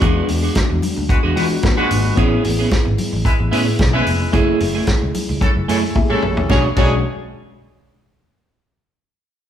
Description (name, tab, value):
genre	disco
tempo	111 BPM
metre	4/4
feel	straight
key	B dorian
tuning	A4 = 442 Hz
part	electric guitar at the edge of break-up	accompaniment	0.0-6.9 s	A3 to C#5	-23 LUFS	right 5 dB	spring reverb
part	tine electric piano	accompaniment	0.0-7.0 s	G#3 to G#5	-22 LUFS	left 2 dB	overdrive, fast stereo tremolo
part	picked electric bass	bass	0.0-7.0 s	E#1 to E3	-21 LUFS	equal	none
part	warm soul drum kit	drums	0.0-6.9 s	crash cymbal, hi-hat, kick drum, snare drum, toms	-19 LUFS	equal	none
part	congas	percussion	0.0-7.0 s	none	-28 LUFS	left 4 dB	none
part	clear horn section	stabs	1.1-7.0 s	D3 to B4	-23 LUFS	left 1 dB	none
room	moderate large studio reverb, RT60 1.2 s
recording	band playing live in one room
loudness	-14 LUFS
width	side -10 dB against mid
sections	0.0-6.5 A section; 6.5-8.7 B section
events	tine electric piano fill 1.1-2.2, 5.4-6.5; drum fill 6.0-6.5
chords	0.0 E9; 2.2 Amaj9; 4.3 F#m9; 6.5 Bm69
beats	| 0.02 0.56 1.09 1.64 | 2.17 2.71 3.25 3.79 | 4.33 4.88 5.42 5.96 | 6.50